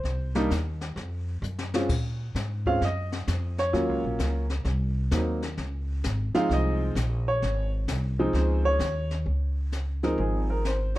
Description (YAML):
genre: jazz piano trio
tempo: 130 BPM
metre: 4/4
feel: swing 66% on 8ths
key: Db major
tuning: A4 = 439 Hz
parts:
  - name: warm grand piano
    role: melody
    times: 0.0-11.0 s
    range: F3 to F5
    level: -27 LUFS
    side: right 1 dB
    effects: none
  - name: upright bass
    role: bass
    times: 0.0-11.0 s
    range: Ab1 to Bb2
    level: -27 LUFS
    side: equal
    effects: none
  - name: jazz brush drum kit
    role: drums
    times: 0.0-11.0 s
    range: brushed snare drum, crash cymbal, hi-hat, kick drum, snare drum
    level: -34 LUFS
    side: left 3 dB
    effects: none
room: light reverb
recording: dark, warm production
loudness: -25 LUFS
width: side -16 dB against mid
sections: 0.0-9.3 A section; 9.3-11.0 B section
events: grand piano solo 0.0-9.3; drum fill 1.4-1.9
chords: 0.0 Cm; 1.0 F5; 1.9 Bb7(no3); 3.7 Ebm7; 4.7 Cm7b5; 5.6 Dbmaj7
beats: | 0.05 0.51 0.97 1.43 | 1.89 2.35 2.82 3.28 | 3.74 4.20 4.66 5.12 | 5.58 6.04 6.50 6.96 | 7.42 7.88 8.35 8.81 | 9.27 9.73 10.19 10.65